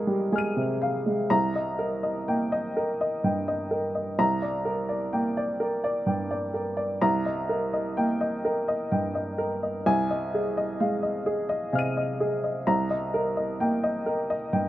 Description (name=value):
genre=neoclassical minimalist piano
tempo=42 BPM (dotted quarters)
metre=6/8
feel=rubato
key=C minor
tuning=A4 = 440 Hz
part: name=warm upright piano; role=solo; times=0.0-14.7 s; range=C2 to Eb7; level=-24 LUFS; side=equal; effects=none
room=little or no reverb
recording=recorded outdoors, with no room sound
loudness=-24 LUFS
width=side -14 dB against mid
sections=0.0-1.3 A section; 1.3-14.7 B section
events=none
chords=0.0 Fm7/C; 1.3 Cm7; 4.2 Gm/C; 7.0 Cm7; 9.9 Fm7/C; 12.7 Cm7